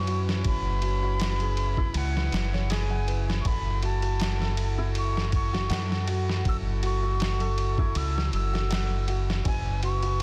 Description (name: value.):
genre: trip hop.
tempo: 80 BPM.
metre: 4/4.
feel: swing 54% on 16ths.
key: F# minor.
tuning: A4 = 445 Hz.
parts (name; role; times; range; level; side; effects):
breathy mellow jazz flute; melody; 0.0-10.2 s; F#5 to E6; -36 LUFS; equal; dub echo.
warm chamber violin section; sustained chords; 0.0-10.2 s; C#4 to B4; -41 LUFS; equal; none.
felt-muted upright piano; arpeggios; 0.0-10.2 s; E4 to F#5; -38 LUFS; equal; dub echo.
deep dub fingered electric bass; bass; 0.0-10.2 s; F#1 to F#2; -29 LUFS; equal; none.
trip hop sampler-style drum kit; drums; 0.1-10.2 s; kick drum, ride cymbal, snare drum; -33 LUFS; equal; none.
room: small room ambience.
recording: dense, heavily limited modern master.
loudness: -27 LUFS.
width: mono.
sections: 0.0-10.2 A section.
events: none.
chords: 0.0 C#m7/F#; 3.5 F#m7; 9.5 C#m7/F#.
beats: | 0.45 1.20 1.95 2.70 | 3.45 4.20 4.95 5.70 | 6.45 7.20 7.95 8.70 | 9.45 10.20.